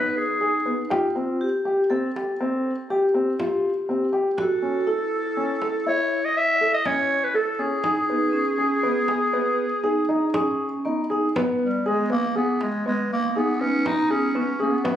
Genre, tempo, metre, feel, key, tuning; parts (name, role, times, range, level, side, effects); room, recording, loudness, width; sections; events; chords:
contemporary instrumental, chamber music in an uneven meter; 121 BPM; 7/4; straight; G# phrygian, G# harmonic minor from 11.4 s; A4 = 440 Hz
growling clarinet; melody; 0.0-15.0 s; G3 to E5; -23 LUFS; equal
vibraphone with medium mallets; second line; 0.0-15.0 s; B3 to A4; -26 LUFS; equal
dark grand piano; arpeggios; 0.0-15.0 s; B3 to A4; -25 LUFS; equal
frame drum; percussion; 0.7-15.0 s; -34 LUFS; right 2 dB
light reverb; recorded on a phone in the room, studio ambience; -20 LUFS; side -10 dB against mid
0.0-11.4 A section; 11.4-15.0 B section
0.0 G#m; 0.9 Fsus2 (rootless); 4.4 A; 7.8 G#m